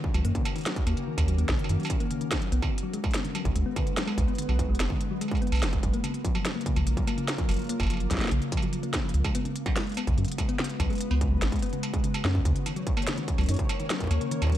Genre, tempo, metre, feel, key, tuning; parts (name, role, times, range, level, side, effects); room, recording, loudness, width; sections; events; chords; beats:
IDM; 145 BPM; 4/4; straight; Eb minor; A4 = 441 Hz
glassy FM pad; sustained chords; 0.0-14.6 s; Db3 to B4; -34 LUFS; equal; ensemble chorus, built-in reverb
electronic kick drum; drums; 0.0-14.5 s; -30 LUFS; equal; distortion, small room reverb
thumb-piano-like synth pluck; arpeggios; 0.1-14.6 s; Db3 to Eb4; -33 LUFS; left 3 dB; chorus, digital delay
round analog bass; bass; 0.1-14.6 s; F#1 to Gb2; -25 LUFS; equal
industrial drum kit; drums; 0.1-14.6 s; hi-hat, snare drum, struck metal; -33 LUFS; right 1 dB; small room reverb
flickering grainy texture; texture; 12.7-14.6 s; Db5; -41 LUFS; equal; built-in reverb
light reverb; -25 LUFS; side -12 dB against mid
0.0-14.6 A section
0.0 Ebm7; 2.5 Bm6; 5.8 Gbmaj7; 9.1 Db7sus4; 12.5 Ebm7
0.04 0.45 | 0.87 1.28 1.69 2.11 | 2.52 2.94 3.35 3.76 | 4.18 4.59 5.00 5.42 | 5.83 6.25 6.66 7.07 | 7.49 7.90 8.31 8.73 | 9.14 9.56 9.97 10.38 | 10.80 11.21 11.62 12.04 | 12.45 12.87 13.28 13.69 | 14.11 14.52